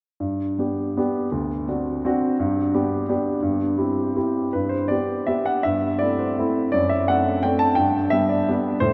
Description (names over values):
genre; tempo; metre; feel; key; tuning
classical, romantic triple-time dance for piano with dotted rhythms; 147-190 BPM; 3/4; rubato; G major; A4 = 440 Hz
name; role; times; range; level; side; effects
warm baby grand piano; solo; 0.2-8.9 s; D2 to A5; -22 LUFS; equal; none
room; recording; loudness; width
wet cathedral reverb, RT60 5.8 s; in a vast, echoing space; -22 LUFS; mono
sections
0.2-4.5 A section; 4.5-8.9 B section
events
none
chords
0.2 G; 1.3 D7; 2.4 G; 3.4 C/G; 4.5 G; 5.7 Am7/G; 6.7 D7/F#; 7.8 G